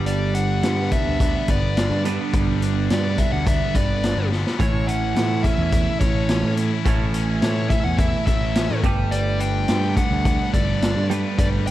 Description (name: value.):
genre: indie rock.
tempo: 106 BPM.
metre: 4/4.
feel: straight.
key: unclear.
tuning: A4 = 440 Hz.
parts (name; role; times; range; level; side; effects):
cranked stack guitar; riff; 0.0-11.7 s; A2 to B4; -29 LUFS; left 8 dB; overdrive.
twelve-string electric guitar; riff; 0.0-11.7 s; G2 to B4; -25 LUFS; right 7 dB; lush chorus, slapback echo.
fuzz picked electric bass; bass; 0.0-11.7 s; G1 to A2; -24 LUFS; equal; overdrive.
dark smooth lead guitar; melody; 0.1-11.7 s; C#5 to G5; -27 LUFS; left 2 dB; overdrive, slapback echo, plate reverb.
vintage drum kit; drums; 0.1-11.7 s; hi-hat, kick drum, snare drum; -22 LUFS; equal; none.
room: light reverb.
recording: dark, warm production.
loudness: -18 LUFS.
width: side -14 dB against mid.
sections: 0.0-11.7 A section.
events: drum fill 4.3.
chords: 0.0 G; 4.6 A; 8.8 Gadd9.